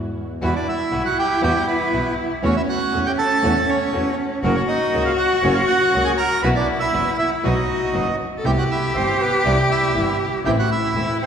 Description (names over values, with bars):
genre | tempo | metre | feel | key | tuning
tango | 120 BPM | 4/4 | rubato | E minor | A4 = 440 Hz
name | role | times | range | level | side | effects
flamenco guitar | accompaniment | 0.0-11.1 s | B2 to F#4 | -27 LUFS | left 2 dB | none
dark studio string section | stabs | 0.0-11.2 s | G3 to F#4 | -31 LUFS | right 2 dB | none
rich double bass | bass | 0.0-11.2 s | E1 to E2 | -24 LUFS | right 1 dB | none
bandoneon | melody | 0.4-11.3 s | A#3 to A#5 | -22 LUFS | right 3 dB | none
warm cello | second line | 0.4-11.3 s | C#4 to A4 | -22 LUFS | left 2 dB | none
room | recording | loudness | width
wet concert hall reverb, RT60 2.4 s | recorded in a church or concert hall | -17 LUFS | side -7 dB against mid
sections
0.4-11.3 A section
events
none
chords
0.4 Emadd9; 2.4 A6/E; 4.4 F#; 6.4 Bsus4; 7.4 B; 8.4 Cmaj7; 10.5 Am